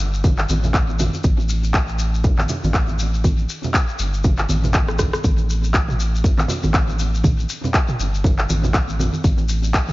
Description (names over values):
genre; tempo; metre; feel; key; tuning
afro house; 120 BPM; 4/4; swing 57% on 16ths; unclear; A4 = 440 Hz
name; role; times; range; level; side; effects
warm sub bass; bass; 0.0-9.9 s; G1 to A1; -21 LUFS; equal; sidechain pumping
shekere; percussion; 0.1-9.9 s; none; -31 LUFS; left 5 dB; analog delay
electronic kick drum; drums; 0.2-9.9 s; none; -18 LUFS; equal; none
congas; percussion; 0.3-9.4 s; none; -25 LUFS; right 1 dB; analog delay
house drum kit; drums; 0.4-9.9 s; handclaps, rim click, toms; -24 LUFS; equal; none
room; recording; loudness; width
small room reverb; echo-heavy mix, nothing above 7.5 kHz; -17 LUFS; side -19 dB against mid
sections
0.0-9.9 A section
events
drum fill 4.7-5.2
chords
none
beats
0.24 0.74 | 1.24 1.74 2.24 2.74 | 3.24 3.74 4.24 4.74 | 5.24 5.74 6.24 6.74 | 7.24 7.74 8.24 8.74 | 9.24 9.74